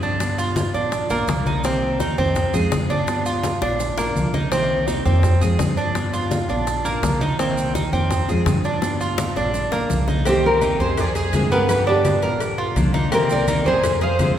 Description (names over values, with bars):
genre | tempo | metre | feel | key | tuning
latin, Cuban son and guajira | 167 BPM | 4/4 | straight | C minor | A4 = 440 Hz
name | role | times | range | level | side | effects
fingerpicked steel-string acoustic guitar | accompaniment | 0.0-14.4 s | C3 to G4 | -26 LUFS | left 1 dB | none
Cuban tres | arpeggios | 0.0-14.4 s | Bb3 to C5 | -23 LUFS | right 3 dB | none
upright bass | bass | 0.0-14.4 s | Bb1 to G2 | -24 LUFS | equal | none
bongos and cowbell | percussion | 0.0-14.4 s | none | -30 LUFS | left 4 dB | none
maracas | percussion | 0.0-14.4 s | none | -36 LUFS | right 4 dB | none
congas | percussion | 0.2-14.4 s | none | -26 LUFS | left 1 dB | none
nylon-string guitar | melody | 10.3-14.4 s | G4 to F5 | -22 LUFS | left 1 dB | none
warm studio violin section | second line | 10.3-14.4 s | D4 to C5 | -28 LUFS | left 1 dB | none
room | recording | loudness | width
wet church reverb, RT60 2.9 s | recorded in a church or concert hall | -18 LUFS | side -10 dB against mid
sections
0.0-10.3 A section; 10.3-14.4 B section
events
drum fill 3.4-4.5, 8.8-10.3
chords
0.2 G7; 0.9 Bb; 1.6 Cm7; 2.4 Fm; 3.1 G7; 3.8 Bb; 4.5 Cm7; 5.2 Fm; 6.0 G7; 6.7 Bb; 7.4 Cm7; 8.1 Fm; 8.8 G7; 9.5 Bb; 10.3 Cm7; 11.0 Fm; 11.7 G7; 12.4 Bb; 13.1 Cm7; 13.8 Fm